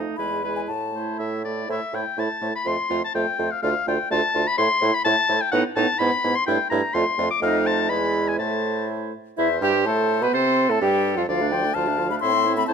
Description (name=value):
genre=quick classical-period movement for wind quintet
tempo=126 BPM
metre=2/4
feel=rubato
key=A minor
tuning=A4 = 441 Hz
part: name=clear oboe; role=second line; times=0.0-12.7 s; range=A4 to D6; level=-24 LUFS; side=left 4 dB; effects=none
part: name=bright clarinet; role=accompaniment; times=0.0-12.7 s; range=C4 to C5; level=-28 LUFS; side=right 11 dB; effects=none
part: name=clear French horn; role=accompaniment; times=0.0-12.7 s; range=E3 to C4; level=-28 LUFS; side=right 1 dB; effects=none
part: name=warm bassoon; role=bass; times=0.0-12.7 s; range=D2 to C3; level=-27 LUFS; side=right 4 dB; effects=none
part: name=concert flute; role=melody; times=0.2-12.7 s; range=B4 to C6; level=-27 LUFS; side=left 8 dB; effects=none
room=light reverb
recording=close, detailed microphones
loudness=-20 LUFS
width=side -6 dB against mid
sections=0.0-1.7 A section; 1.7-9.4 B section; 9.4-12.7 B section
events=none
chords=0.2 E; 0.7 A5; 2.7 F; 3.6 Dm; 4.6 Am; 5.5 B7/A; 6.0 E/G#; 6.5 A7(no3)/G; 7.0 Dm/F; 7.4 F7; 7.9 E; 8.4 Am; 9.4 Am/E; 10.3 F; 11.3 Dm; 12.2 Am